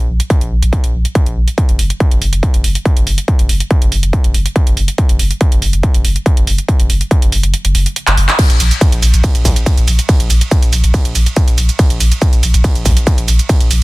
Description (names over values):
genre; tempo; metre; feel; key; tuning
driving peak-time techno; 141 BPM; 4/4; straight; unclear; A4 = 440 Hz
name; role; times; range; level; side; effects
saturated sub bass; bass; 0.0-13.8 s; Gb1 to Bb1; -14 LUFS; equal; sidechain pumping, low-pass filter
techno drum kit; drums; 0.2-13.8 s; crash cymbal, handclaps, hi-hat, ride cymbal, shaker; -18 LUFS; right 2 dB; overdrive
electronic kick drum; drums; 0.3-13.6 s; none; -12 LUFS; equal; distortion, overdrive
room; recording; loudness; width
digital ambience; dense, heavily limited modern master; -10 LUFS; side -21 dB against mid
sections
0.0-8.4 A section; 8.4-13.8 B section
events
kick drops out 7.5-8.4; drum fill 8.1-8.4; drop 8.4-13.8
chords
none